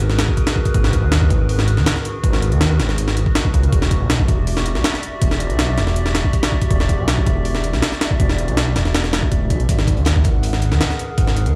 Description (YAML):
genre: drum and bass, jungle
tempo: 161 BPM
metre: 4/4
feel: straight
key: unclear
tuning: A4 = 440 Hz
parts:
  - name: warbly tape-like pad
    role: sustained chords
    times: 0.0-11.6 s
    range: F#4 to F#5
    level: -29 LUFS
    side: equal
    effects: chorus, built-in reverb
  - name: dark detuned saw bass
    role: bass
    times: 0.0-11.6 s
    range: D1 to D#2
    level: -20 LUFS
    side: equal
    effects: tube saturation
  - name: breakbeat sampler-style drum kit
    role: drums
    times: 0.0-11.5 s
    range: hi-hat, kick drum, snare drum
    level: -20 LUFS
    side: equal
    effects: studio ambience
  - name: crunchy breakbeat drum kit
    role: drums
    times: 9.7-11.5 s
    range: hi-hat, snare drum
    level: -36 LUFS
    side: equal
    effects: none
room: light reverb, small room ambience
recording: played on a big sound system in a bare room, large studio reverb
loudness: -18 LUFS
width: mono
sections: 0.0-11.6 A section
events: none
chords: 0.0 G#m9; 3.7 Em9; 9.7 G#m9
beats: 0.00 0.37 | 0.74 1.12 1.49 1.86 | 2.23 2.61 2.98 3.35 | 3.73 4.10 4.47 4.84 | 5.22 5.59 5.96 6.33 | 6.71 7.08 7.45 7.82 | 8.20 8.57 8.94 9.31 | 9.69 10.06 10.43 10.81 | 11.18 11.55